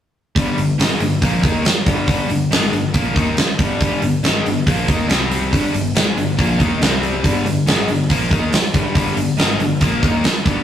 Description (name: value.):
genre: hard rock.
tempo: 140 BPM.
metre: 4/4.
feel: straight.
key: G minor.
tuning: A4 = 441 Hz.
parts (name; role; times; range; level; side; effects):
cranked stack guitar; riff; 0.4-10.6 s; G2 to Eb4; -26 LUFS; right 6 dB; overdrive, tremolo.
distorted electric guitar; riff; 0.4-10.6 s; G2 to Eb4; -19 LUFS; left 3 dB; distortion.
picked electric bass; bass; 0.4-10.6 s; G1 to Eb2; -26 LUFS; equal; none.
big rock drum kit; drums; 0.4-10.6 s; hi-hat, kick drum, snare drum; -17 LUFS; right 1 dB; none.
room: moderate studio reverb, RT60 0.6 s.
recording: rough rehearsal-room recording.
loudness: -14 LUFS.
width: side -10 dB against mid.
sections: 0.4-10.6 A section.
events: none.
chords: 0.4 Gm; 5.1 C5; 5.5 Gm; 6.8 C5; 7.2 Gm.